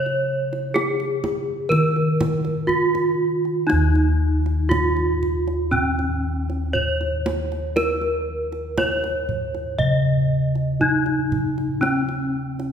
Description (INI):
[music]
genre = Javanese gamelan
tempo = 59 BPM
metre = 4/4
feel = straight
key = Eb slendro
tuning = A4 = 440 Hz
[part]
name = gamelan-type bronze metallophone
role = melody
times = 0.0-12.7 s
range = Db4-45c to Eb5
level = -22 LUFS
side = right 1 dB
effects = none
[part]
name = gamelan-type bossed gongs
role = bass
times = 0.0-12.7 s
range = Eb2 to Db5-45c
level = -23 LUFS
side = left 1 dB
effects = none
[part]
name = kendang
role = percussion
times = 0.1-12.7 s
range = none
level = -30 LUFS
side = right 2 dB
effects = none
[sound]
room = wet recital hall reverb, RT60 1.8 s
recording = recorded in a church or concert hall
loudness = -19 LUFS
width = side -8 dB against mid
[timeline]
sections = 0.0-3.7 A section; 3.7-12.7 B section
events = none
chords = none